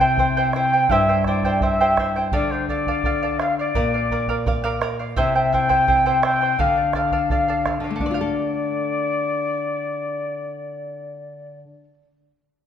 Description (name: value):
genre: andean folk, Andean ensemble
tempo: 84 BPM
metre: 2/4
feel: straight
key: D minor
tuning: A4 = 439 Hz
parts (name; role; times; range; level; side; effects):
- mellow quena; melody; 0.0-11.6 s; C5 to G5; -22 LUFS; left 1 dB; none
- charango; accompaniment; 0.0-12.0 s; E4 to G5; -23 LUFS; right 3 dB; none
- nylon-string guitar; accompaniment; 0.0-12.0 s; G2 to A4; -26 LUFS; left 4 dB; none
- bombo; percussion; 0.0-8.3 s; none; -27 LUFS; right 2 dB; none
room: wet recital hall reverb, RT60 1.6 s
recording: recorded in a church or concert hall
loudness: -18 LUFS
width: side -9 dB against mid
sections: 0.0-8.0 A section; 8.0-10.8 B section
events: none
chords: 0.0 C; 2.3 Dm; 3.7 Bb; 5.2 C; 6.6 Dm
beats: 0.18 | 0.89 1.61 | 2.32 3.04 | 3.75 4.46 | 5.17 5.88 | 6.59 7.30 | 8.01 8.71 | 9.42 10.12